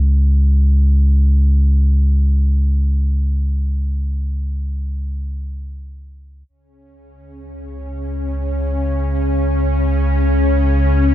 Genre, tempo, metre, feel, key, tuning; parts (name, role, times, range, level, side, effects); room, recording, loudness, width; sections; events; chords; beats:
ambient; free time; A4 = 439 Hz
warm sub bass; bass; 0.0-11.1 s; Db2; -15 LUFS; equal
bowed-like drone; drone; 7.6-11.1 s; Db3 to Db4; -20 LUFS; left 1 dB; built-in reverb
little or no reverb; -14 LUFS; side -14 dB against mid
0.0-6.5 A section; 6.5-11.1 B section
fade-out on sub bass 0.0-6.5; fade-in on sub bass 6.5-11.1; fade-in on synth drone 6.5-11.1
free time